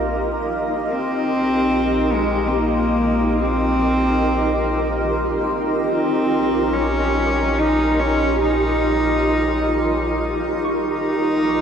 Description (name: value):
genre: ambient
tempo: 72 BPM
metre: 3/4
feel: straight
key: unclear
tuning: A4 = 440 Hz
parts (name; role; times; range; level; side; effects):
- rich cello; melody; 0.0-11.6 s; Ab3 to Eb4; -20 LUFS; equal; shimmer reverb, diffuse ambient delay
- granular cloud pad; sustained chords; 0.0-11.6 s; Eb4 to Eb5; -20 LUFS; equal; built-in reverb, shimmer reverb
- deep rumbling drone; bass; 0.0-11.6 s; Bb1; -27 LUFS; equal; built-in reverb, phaser
- hand-pumped harmonium; drone; 0.0-1.0 s; Bb3; -34 LUFS; right 4 dB; none
- soft round pluck; arpeggios; 3.8-11.1 s; Eb3 to Eb6; -35 LUFS; right 2 dB; none
room: wet huge ambient reverb, RT60 8.5 s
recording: none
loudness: -17 LUFS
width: side -7 dB against mid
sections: 0.9-11.6 A section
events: none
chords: 0.0 Ebadd9/Bb; 5.9 Eb9/Bb